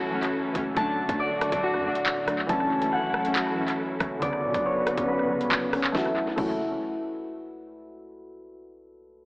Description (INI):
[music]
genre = hip hop, drill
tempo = 139 BPM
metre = 4/4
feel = half-time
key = F# minor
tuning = A4 = 438 Hz
[part]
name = warbly lo-fi synth keys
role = accompaniment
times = 0.0-6.6 s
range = C#3 to D4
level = -30 LUFS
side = equal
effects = chorus, low-pass filter, tape echo
[part]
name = dark symphonic string section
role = sustained chords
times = 0.0-6.1 s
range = D3 to B4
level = -33 LUFS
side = equal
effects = low-pass filter
[part]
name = concert harp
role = arpeggios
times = 0.0-6.6 s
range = A3 to A5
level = -28 LUFS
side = equal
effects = low-pass filter, tape echo
[part]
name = hard-hitting 808-style bass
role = bass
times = 0.0-6.8 s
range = C#1 to B2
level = -40 LUFS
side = equal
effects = none
[part]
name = drill drum kit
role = drums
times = 0.2-6.5 s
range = crash cymbal, handclaps, hi-hat, kick drum, rim click, snare drum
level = -30 LUFS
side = equal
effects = tape echo
[sound]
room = wet echo chamber reverb, RT60 1.4 s, digital ambience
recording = echo-heavy mix, AM radio sound, faint mains hum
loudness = -24 LUFS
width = side -24 dB against mid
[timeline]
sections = 0.0-5.9 A section; 5.9-7.7 B section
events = filter sweep 0.0-5.9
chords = 0.0 F#m7; 0.8 D; 2.5 F#m7; 4.2 Bmadd9; 5.9 F#m7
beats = 0.34 | 0.77 1.20 1.63 2.06 | 2.49 2.92 3.36 3.79 | 4.22 4.65 5.08 5.51 | 5.95 6.38